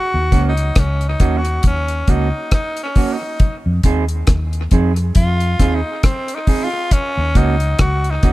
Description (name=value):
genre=roots reggae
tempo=68 BPM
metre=4/4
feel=swing 57% on 16ths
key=Eb dorian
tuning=A4 = 444 Hz
part: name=raspy tenor saxophone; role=melody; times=0.0-8.3 s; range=C4 to Gb4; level=-22 LUFS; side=equal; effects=dub echo
part: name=vintage muted fingered electric bass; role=bass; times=0.1-8.3 s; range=Db2 to F2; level=-18 LUFS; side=equal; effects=none
part: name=mellow electric guitar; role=accompaniment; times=0.3-8.3 s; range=Bb3 to Ab4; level=-23 LUFS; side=right 6 dB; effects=dub echo
part: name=deep reggae drum kit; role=drums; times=0.3-8.3 s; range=hi-hat, kick drum, rim click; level=-15 LUFS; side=equal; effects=none
room=little or no reverb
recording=none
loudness=-14 LUFS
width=side -17 dB against mid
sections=0.0-8.3 A section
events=tenor saxophone solo 0.0-8.3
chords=0.0 Ebm7; 3.4 Fm7; 6.9 Ebm7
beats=0.76 1.64 2.52 | 3.40 4.28 5.16 6.04 | 6.91 7.79